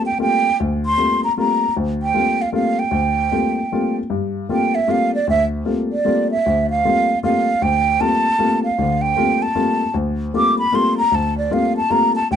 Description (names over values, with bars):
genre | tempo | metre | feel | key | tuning
jazz | 154 BPM | 3/4 | swing 64% on 8ths | G dorian | A4 = 441 Hz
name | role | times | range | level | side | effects
breathy mellow silver concert flute | melody | 0.0-12.4 s | D5 to D6 | -18 LUFS | right 2 dB | none
dark baby grand piano | accompaniment | 0.0-12.4 s | D2 to F4 | -20 LUFS | left 2 dB | none
room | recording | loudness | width
light reverb | dark, warm production, nothing above 10.5 kHz | -16 LUFS | side -8 dB against mid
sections
0.0-4.1 A section; 4.1-12.4 B section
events
flute solo 4.1-12.4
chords
0.0 Gm11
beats
0.19 | 0.58 0.97 1.37 | 1.76 2.15 2.54 | 2.93 3.32 3.71 | 4.10 4.49 4.88 | 5.27 5.66 6.05 | 6.44 6.83 7.22 | 7.61 8.00 8.39 | 8.78 9.17 9.56 | 9.95 10.34 10.72 | 11.11 11.50 11.89 | 12.28